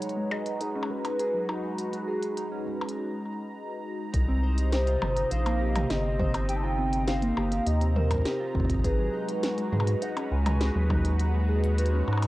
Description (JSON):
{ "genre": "IDM", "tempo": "102 BPM", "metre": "4/4", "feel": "straight", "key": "unclear", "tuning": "A4 = 440 Hz", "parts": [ { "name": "warbly nostalgic lead", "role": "melody", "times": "0.0-12.3 s", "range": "Gb4 to A5", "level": "-33 LUFS", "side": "equal", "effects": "tremolo, lush chorus, vintage 12-bit sampler grit, cassette tape, analog delay" }, { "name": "phased analog pad", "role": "sustained chords", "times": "0.0-12.3 s", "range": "C3 to Bb5", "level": "-34 LUFS", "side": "left 1 dB", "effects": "phaser, chorus, cassette tape" }, { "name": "glitchy drum kit", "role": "drums", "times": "0.0-12.3 s", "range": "hi-hat, percussion blips, snare drum, toms", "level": "-34 LUFS", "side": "left 1 dB", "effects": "small room ambience, cassette tape" }, { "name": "pulsing gated texture", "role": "texture", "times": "0.0-3.0 s", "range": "Bb5", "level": "-44 LUFS", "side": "right 1 dB", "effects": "chorus, built-in reverb, cassette tape" }, { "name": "harp-like synth pluck", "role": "arpeggios", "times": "0.2-12.2 s", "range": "Gb3 to C5", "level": "-33 LUFS", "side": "right 2 dB", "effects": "chorus, cassette tape, analog delay" }, { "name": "round analog bass", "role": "bass", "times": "4.1-12.3 s", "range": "G1 to Ab2", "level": "-26 LUFS", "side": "equal", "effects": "none" }, { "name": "electronic kick drum", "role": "drums", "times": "4.1-11.0 s", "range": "none", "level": "-29 LUFS", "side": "equal", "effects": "small room ambience, cassette tape" } ], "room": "light reverb", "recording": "home recording on cassette", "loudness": "-25 LUFS", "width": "side -17 dB against mid", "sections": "0.0-4.1 A section; 4.1-12.3 B section", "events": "break 3.0-4.1", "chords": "0.0 Abm7; 4.1 Cm7; 8.8 Abm7" }